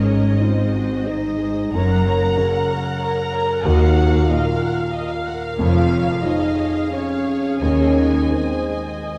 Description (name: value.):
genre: cinematic, emotional film score for orchestra.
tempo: 84-95 BPM.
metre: 3/4.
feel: rubato.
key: Db major.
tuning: A4 = 438 Hz.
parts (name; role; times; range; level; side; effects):
rich symphonic violin section; melody; 0.0-9.2 s; C5 to Ab5; -36 LUFS; equal; none.
dark symphonic violin section; second line; 0.0-9.0 s; C5 to Bb5; -31 LUFS; equal; none.
warm baby grand piano; accompaniment; 0.0-9.2 s; Eb2 to Eb4; -28 LUFS; equal; none.
warm symphonic viola section; accompaniment; 0.0-9.2 s; F4 to Gb5; -32 LUFS; equal; none.
dark French horn section; sustained chords; 0.0-9.0 s; C4 to Bb4; -24 LUFS; equal; none.
concert harp; arpeggios; 0.0-9.2 s; Gb2 to Db6; -30 LUFS; equal; none.
rich chamber double bass section; bass; 0.0-8.2 s; F1 to Eb2; -25 LUFS; equal; none.
rich symphonic cello section; bass; 0.0-8.2 s; Eb2 to Ab2; -28 LUFS; equal; none.
room: wet scoring stage reverb, RT60 1.8 s.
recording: dark, warm production.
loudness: -19 LUFS.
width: mono.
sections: 0.0-9.2 A section.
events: none.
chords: 0.0 Ab; 1.7 Gb; 3.7 Ebmadd9; 5.6 Db/F; 7.6 Ab/Eb.